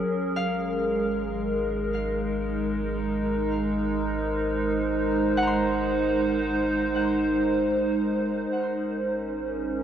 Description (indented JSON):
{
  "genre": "ambient",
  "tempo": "free time",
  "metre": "none",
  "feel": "none",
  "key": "Ab mixolydian",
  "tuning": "A4 = 439 Hz",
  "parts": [
    { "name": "warbly tape-like pad", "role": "sustained chords", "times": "0.0-9.8 s", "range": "Ab3 to Eb5", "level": "-24 LUFS", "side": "right 1 dB", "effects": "chorus, built-in reverb, phaser" },
    { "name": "warm sub bass", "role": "bass", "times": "0.0-9.8 s", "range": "Ab1", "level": "-36 LUFS", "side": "equal", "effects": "none" },
    { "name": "concert harp", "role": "arpeggios", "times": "0.4-7.1 s", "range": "F5 to C6", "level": "-34 LUFS", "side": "left 1 dB", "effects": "diffuse ambient delay" }
  ],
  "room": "wet huge ambient reverb, RT60 8.0 s",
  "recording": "dreamy mix soaked in reverb",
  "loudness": "-24 LUFS",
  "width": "side -9 dB against mid",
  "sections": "0.0-9.8 A section",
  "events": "fade-out on sub bass 0.0-9.8",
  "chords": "0.1 Ab; 8.5 Dbmaj7(no3)/Ab"
}